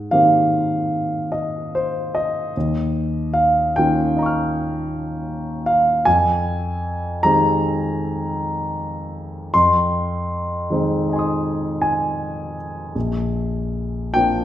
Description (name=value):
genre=classical, impressionist solo piano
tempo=52 BPM (dotted quarters)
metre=9/8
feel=rubato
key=Ab major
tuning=A4 = 440 Hz
part: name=warm concert grand piano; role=solo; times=0.0-14.4 s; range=Bb1 to F6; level=-18 LUFS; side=equal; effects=none
room=wet recital hall reverb, RT60 1.4 s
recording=recorded in a church or concert hall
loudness=-18 LUFS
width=side -12 dB against mid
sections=0.0-14.4 A section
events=none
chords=0.0 Abmaj9; 2.6 Eb9; 6.1 Fm9; 9.5 Ab6/F; 13.0 Bbadd9